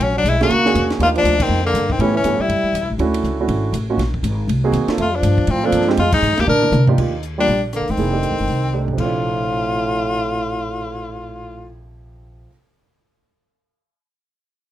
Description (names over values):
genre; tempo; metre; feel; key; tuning
jazz, small-group swing and bop; 241 BPM; 4/4; swing 60% on 8ths; Bb major; A4 = 440 Hz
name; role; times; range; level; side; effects
edgy tenor saxophone; melody; 0.0-2.9, 5.0-11.8 s; Bb3 to Bb4; -20 LUFS; left 4 dB; none
mellow trombone; second line; 0.0-2.9, 5.0-11.8 s; A2 to D4; -23 LUFS; right 3 dB; none
upright bass; bass; 0.0-12.4 s; F1 to C3; -21 LUFS; equal; none
compact cocktail drum kit; drums; 0.0-10.9 s; crash cymbal, cymbal swell, hi-hat, kick drum, ride cymbal, rim click, snare drum, toms; -27 LUFS; equal; none
warm grand piano; accompaniment; 0.4-12.5 s; C3 to A4; -22 LUFS; right 5 dB; none
room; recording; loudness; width
light reverb; none; -16 LUFS; side -12 dB against mid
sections
0.0-7.0 A section; 7.0-9.0 B section; 9.0-11.0 C section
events
band accent 1.4, 6.1; drum fill 6.5-7.0, 8.7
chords
0.0 Bb7alt; 1.0 Ebmaj9; 2.0 A7; 3.0 Dmaj9; 4.0 Absus2; 4.5 Ab9; 5.0 Bbmaj9; 6.0 Fm7; 6.5 Bbadd9; 7.0 Ebmaj7; 8.0 F13; 9.0 Bbmaj9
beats
| 0.01 0.25 0.50 0.75 | 1.00 1.25 1.50 1.75 | 2.00 2.25 2.50 2.75 | 2.99 3.24 3.49 3.74 | 3.99 4.24 4.49 4.74 | 4.99 5.24 5.48 5.73 | 5.98 6.23 6.48 6.73 | 6.98 7.23 7.48 7.73 | 7.98 8.23 8.48 8.73 | 8.98 9.23 9.48 9.73 | 9.99 10.24 10.49 10.74